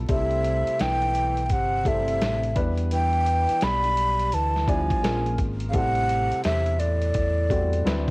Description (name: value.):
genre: hip hop, jazz-hop.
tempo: 85 BPM.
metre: 4/4.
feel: swing 63% on 16ths.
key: A dorian.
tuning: A4 = 440 Hz.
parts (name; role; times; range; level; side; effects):
dark grand piano; accompaniment; 0.0-8.1 s; F#3 to D5; -30 LUFS; left 2 dB; cassette tape.
fingered electric bass; bass; 0.0-8.1 s; G1 to E2; -26 LUFS; equal; none.
breathy mellow jazz flute; melody; 0.1-8.1 s; D5 to B5; -24 LUFS; equal; none.
breathy tenor saxophone; second line; 0.1-8.1 s; A2 to G3; -31 LUFS; right 1 dB; cassette tape.
dusty soul sampler-style drum kit; drums; 0.1-8.1 s; hi-hat, kick drum, snare drum; -28 LUFS; equal; cassette tape.
room: light reverb, small room ambience.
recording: home recording on cassette, vinyl crackle.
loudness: -21 LUFS.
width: side -24 dB against mid.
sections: 0.0-8.1 A section.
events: none.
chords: 0.1 C6; 2.6 Em7; 5.0 Bbm7; 5.7 Am7.